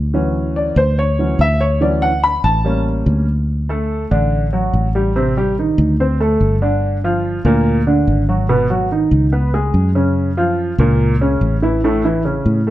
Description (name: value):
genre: Afro-Cuban jazz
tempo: 144 BPM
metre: 4/4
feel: straight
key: D major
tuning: A4 = 439 Hz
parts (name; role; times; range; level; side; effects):
- fingered electric bass; bass; 0.0-12.7 s; G1 to A2; -17 LUFS; equal; none
- warm upright piano; accompaniment; 0.1-12.7 s; A2 to B5; -16 LUFS; equal; none
room: light reverb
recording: nothing above 10.3 kHz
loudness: -14 LUFS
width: side -14 dB against mid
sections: 0.0-3.5 A section; 3.5-12.7 B section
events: upright piano solo 0.0-3.5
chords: 0.1 Dmaj7; 2.6 A7b9; 3.5 D; 5.2 Am7b5; 6.0 D5; 6.8 Gm7; 8.5 G#m7; 9.3 C#5; 10.2 F#maj7; 11.8 A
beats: | 0.14 0.56 0.98 1.40 | 1.81 2.23 2.65 3.07 | 3.48 3.90 4.32 4.74 | 5.16 5.57 5.99 6.41 | 6.83 7.24 7.66 8.08 | 8.49 8.91 9.33 9.75 | 10.16 10.58 11.00 11.42 | 11.84 12.25 12.67